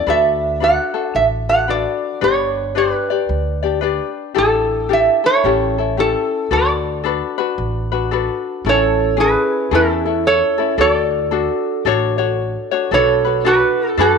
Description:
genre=Hawaiian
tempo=112 BPM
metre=4/4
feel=swing 63% on 8ths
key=D major, A major from 8.6 s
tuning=A4 = 441 Hz
part: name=metal-body resonator slide guitar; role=melody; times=0.0-14.2 s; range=E4 to F#5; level=-16 LUFS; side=right 3 dB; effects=none
part: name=ukulele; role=accompaniment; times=0.0-14.2 s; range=C#4 to D5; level=-19 LUFS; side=left 11 dB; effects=none
part: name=upright bass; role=bass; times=0.0-14.2 s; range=G1 to F#2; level=-24 LUFS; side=right 2 dB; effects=none
part: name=vibraphone with medium mallets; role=second line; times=8.7-14.2 s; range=E4 to A4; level=-22 LUFS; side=right 12 dB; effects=tape echo
room=moderate echo chamber reverb, RT60 1.6 s, small room ambience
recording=1960s-style stereo with parts hard left and right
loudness=-14 LUFS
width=side -5 dB against mid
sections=0.0-8.6 A section; 8.6-14.2 B section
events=none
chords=0.1 D6; 2.2 G; 4.4 A7sus4; 5.4 A7; 6.5 D6; 8.6 Amaj7; 10.8 Dmaj7; 12.9 Bm7

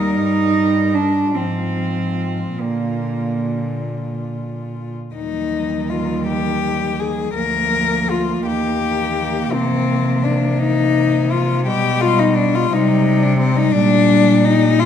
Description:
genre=classical, lyrical piece for cello ensemble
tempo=46-59 BPM (dotted quarters)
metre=6/8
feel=rubato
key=Eb major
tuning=A4 = 441 Hz
part: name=warm cello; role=melody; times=0.0-14.9 s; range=C4 to Bb4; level=-19 LUFS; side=left 8 dB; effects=none
part: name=rich cello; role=second line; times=0.0-14.9 s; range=G3 to Eb4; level=-22 LUFS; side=right 6 dB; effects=none
part: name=warm cello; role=accompaniment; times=0.0-14.9 s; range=D3 to G3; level=-24 LUFS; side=left 1 dB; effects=none
part: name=rich cello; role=bass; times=0.0-14.9 s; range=D2 to C3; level=-21 LUFS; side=right 1 dB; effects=none
room=moderate recital hall reverb, RT60 1.4 s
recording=none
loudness=-15 LUFS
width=side -8 dB against mid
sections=0.0-5.2 A section; 5.2-14.9 B section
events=none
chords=0.2 Eb/G; 1.3 Fm/Ab; 2.6 Bb; 5.2 Eb; 7.4 Bb/D; 8.5 Eb; 9.5 Cm7; 11.7 G/B; 12.7 Cm; 13.7 Gm/Bb

